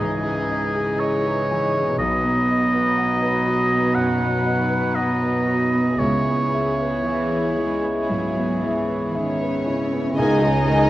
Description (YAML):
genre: cinematic, emotional film score for orchestra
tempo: 57-61 BPM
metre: 4/4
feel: rubato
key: C# minor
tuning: A4 = 439 Hz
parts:
  - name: clear oboe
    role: second line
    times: 0.0-10.9 s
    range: G#4 to G#5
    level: -24 LUFS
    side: right 1 dB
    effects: none
  - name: warm symphonic violin section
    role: second line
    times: 0.0-10.9 s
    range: D#4 to G#5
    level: -29 LUFS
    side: left 2 dB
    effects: none
  - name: clear baby grand piano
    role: accompaniment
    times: 0.0-10.9 s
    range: B1 to F#5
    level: -25 LUFS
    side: left 1 dB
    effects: none
  - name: dark studio viola section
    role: accompaniment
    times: 0.0-10.9 s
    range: C#3 to D#5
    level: -26 LUFS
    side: right 1 dB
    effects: none
  - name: warm symphonic cello section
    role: bass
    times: 0.0-10.9 s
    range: B2 to G#3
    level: -26 LUFS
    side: right 1 dB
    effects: none
  - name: dark studio double bass section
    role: bass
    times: 2.0-10.9 s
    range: B1 to C#2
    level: -26 LUFS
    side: right 2 dB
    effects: none
  - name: dark cello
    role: melody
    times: 9.1-10.9 s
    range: C#4 to D#4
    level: -25 LUFS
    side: right 1 dB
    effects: none
  - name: warm chamber violin section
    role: melody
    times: 9.1-10.9 s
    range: C#5 to D#5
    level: -28 LUFS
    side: left 2 dB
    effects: none
  - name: bright clarinet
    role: second line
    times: 10.2-10.9 s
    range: D#5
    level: -28 LUFS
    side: right 1 dB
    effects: none
  - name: mellow hollow silver concert flute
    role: second line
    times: 10.2-10.9 s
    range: G#5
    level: -28 LUFS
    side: left 1 dB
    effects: none
  - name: mellow French horn section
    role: sustained chords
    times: 10.2-10.9 s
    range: G#3 to D#4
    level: -24 LUFS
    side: left 1 dB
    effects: none
room: wet recital hall reverb, RT60 1.6 s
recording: worn, warbling old tape, cassette tape, warbly pitch drift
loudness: -18 LUFS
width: side -15 dB against mid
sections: 0.0-10.2 A section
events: none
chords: 0.0 C#madd9; 2.0 B; 6.0 C#m7; 10.2 C#sus2